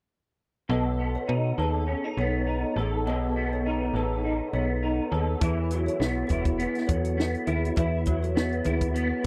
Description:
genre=indie pop, bedroom pop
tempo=102 BPM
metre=4/4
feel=swing 55% on 16ths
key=unclear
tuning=A4 = 440 Hz
part: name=kalimba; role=second line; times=0.7-9.3 s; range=G#4 to E5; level=-36 LUFS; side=equal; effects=lush chorus, tape echo
part: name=electric guitar through a small old amp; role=accompaniment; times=0.7-9.3 s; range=B2 to A4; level=-30 LUFS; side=equal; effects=ensemble chorus, warbly pitch drift
part: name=slap-like FM bass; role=bass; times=0.7-9.3 s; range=E1 to B2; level=-31 LUFS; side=equal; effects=none
part: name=compact cocktail drum kit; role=drums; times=5.4-9.3 s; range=hi-hat, kick drum, snare drum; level=-30 LUFS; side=equal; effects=none
room=little or no reverb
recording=dry, close 1970s-style studio recording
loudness=-27 LUFS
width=mono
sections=0.7-9.3 A section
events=none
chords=0.7 B7; 5.4 Esus2

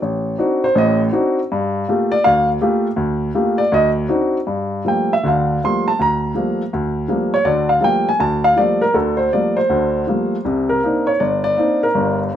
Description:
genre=solo jazz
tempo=161 BPM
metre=4/4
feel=swing 65% on 8ths, rubato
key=G minor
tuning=A4 = 444 Hz
part: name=warm baby grand piano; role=solo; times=0.0-12.3 s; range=G1 to C6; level=-15 LUFS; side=equal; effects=none
room=moderate studio ambience, RT60 0.5 s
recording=none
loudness=-15 LUFS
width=side -10 dB against mid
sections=0.0-4.5 A section; 4.5-12.4 A section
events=grand piano solo 0.0-12.4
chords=0.0 D7b9; 1.5 Gm9; 3.7 D7b9; 4.5 Gm9; 10.5 Cm9

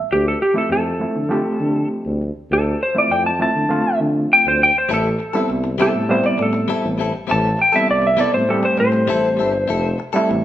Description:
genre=blues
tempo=100 BPM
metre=4/4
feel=straight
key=A minor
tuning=A4 = 440 Hz
part: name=overdriven reed electric piano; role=accompaniment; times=0.0-10.4 s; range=F3 to G4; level=-21 LUFS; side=right 1 dB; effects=fast tremolo
part: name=mellow tuba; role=bass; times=0.0-10.4 s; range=F1 to D3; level=-22 LUFS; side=equal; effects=none
part: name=electric slide guitar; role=melody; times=0.1-10.0 s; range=G4 to A5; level=-17 LUFS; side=equal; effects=none
part: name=direct-recorded clean electric guitar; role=stabs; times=4.9-10.3 s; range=G3 to A4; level=-24 LUFS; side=left 5 dB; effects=none
room=moderate large studio reverb, RT60 1.3 s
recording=band playing live in one room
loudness=-15 LUFS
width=side -12 dB against mid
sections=0.0-10.4 A section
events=electric slide guitar solo 0.0-10.4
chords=0.1 Dm7; 4.9 Am7; 9.7 Fmaj7

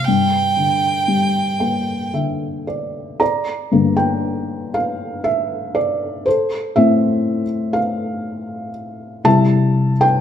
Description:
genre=celtic folk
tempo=60 BPM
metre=3/4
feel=rubato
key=G dorian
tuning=A4 = 441 Hz
part: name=rich fiddle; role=melody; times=0.0-2.1 s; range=G5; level=-19 LUFS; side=right 5 dB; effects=none
part: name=felt-muted upright piano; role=accompaniment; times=0.0-10.2 s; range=G2 to Bb5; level=-17 LUFS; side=left 1 dB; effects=none
room=moderate recital hall reverb, RT60 1.6 s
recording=none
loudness=-16 LUFS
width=side -9 dB against mid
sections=0.0-3.2 A section; 3.2-10.2 B section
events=felt piano fill 1.1-3.2; felt piano solo 3.2-10.2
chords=0.1 Gm; 6.3 F/A; 9.3 C

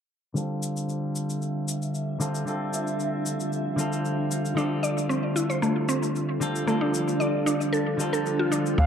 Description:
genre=organic downtempo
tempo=114 BPM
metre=4/4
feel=straight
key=D minor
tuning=A4 = 442 Hz
part: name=clean electric guitar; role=accompaniment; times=0.3-8.8 s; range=D3 to A4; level=-28 LUFS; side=equal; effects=sidechain pumping, low-pass filter, dub echo
part: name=granular cloud pad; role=sustained chords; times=1.5-8.9 s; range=D4 to E5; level=-30 LUFS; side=right 1 dB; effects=built-in reverb, sidechain pumping
part: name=shaker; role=drums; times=0.4-8.9 s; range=none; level=-36 LUFS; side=left 4 dB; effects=none
part: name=mallet-like synth pluck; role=arpeggios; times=4.6-8.9 s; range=A3 to D5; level=-27 LUFS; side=equal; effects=chorus, dub echo
part: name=bright Native American-style cedar flute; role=melody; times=8.8-8.9 s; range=F5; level=-26 LUFS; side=right 3 dB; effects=none
part: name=round analog bass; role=bass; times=8.8-8.9 s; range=D2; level=-19 LUFS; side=equal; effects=none
part: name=electronic kick drum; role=drums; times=8.8-8.9 s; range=none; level=-26 LUFS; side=equal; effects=none
room=wet spring reverb, RT60 1.6 s, digital ambience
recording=echo-heavy mix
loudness=-24 LUFS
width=side -8 dB against mid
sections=0.4-8.8 A section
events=filter sweep on clean electric guitar 0.4-8.8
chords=0.4 Dm7

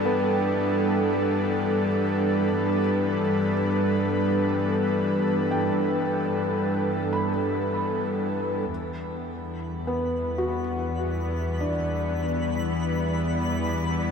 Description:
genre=ambient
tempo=free time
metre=none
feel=none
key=E minor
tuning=A4 = 440 Hz
part: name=airy breathy pad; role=sustained chords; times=0.0-14.1 s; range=E3 to D5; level=-25 LUFS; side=equal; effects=chorus, shimmer reverb
part: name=felt-muted upright piano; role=arpeggios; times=0.0-14.1 s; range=B3 to B5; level=-32 LUFS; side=left 1 dB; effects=diffuse ambient delay, shimmer reverb
part: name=clear studio double bass section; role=bass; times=0.0-14.1 s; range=E2 to G2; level=-32 LUFS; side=equal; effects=none
part: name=bowed-like drone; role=drone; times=0.0-14.1 s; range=E3 to B3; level=-32 LUFS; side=left 2 dB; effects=built-in reverb
part: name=twinkling granular texture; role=texture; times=9.8-14.1 s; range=B5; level=-37 LUFS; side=left 1 dB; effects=built-in reverb, shimmer reverb
room=wet cathedral reverb, RT60 6.5 s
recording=none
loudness=-23 LUFS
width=side -6 dB against mid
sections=0.0-8.7 A section; 8.7-14.1 B section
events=fade-in on analog synth pad 8.7-14.1; fade-in on synth texture 8.7-14.1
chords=0.0 Gmaj7; 8.7 Em7

